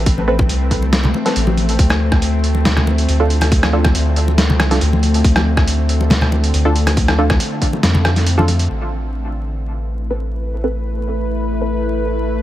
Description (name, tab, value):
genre	deep dubstep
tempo	139 BPM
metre	4/4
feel	half-time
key	A minor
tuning	A4 = 440 Hz
part	bowed-like drone	sustained chords	0.0-12.4 s	D3 to B4	-22 LUFS	left 2 dB	built-in reverb
part	filtered dub chord stab	stabs	0.0-11.7 s	C4 to B4	-23 LUFS	right 2 dB	chorus, dub echo
part	soft dub sub bass	bass	0.0-12.4 s	A1 to F2	-17 LUFS	equal	none
part	electronic kick drum	drums	0.1-7.7 s	none	-16 LUFS	equal	none
part	trip hop sampler-style drum kit	drums	0.1-8.7 s	hi-hat, rim click, snare drum	-19 LUFS	equal	low-pass filter on hats, low-pass filter on snare, low-pass filter on room
part	congas	percussion	0.2-8.6 s	none	-23 LUFS	left 1 dB	none
room	light reverb, digital ambience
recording	vinyl crackle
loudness	-14 LUFS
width	side -14 dB against mid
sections	0.0-8.7 A section; 8.7-12.4 B section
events	none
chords	0.0 Amadd9; 1.8 Dm; 8.7 Amadd9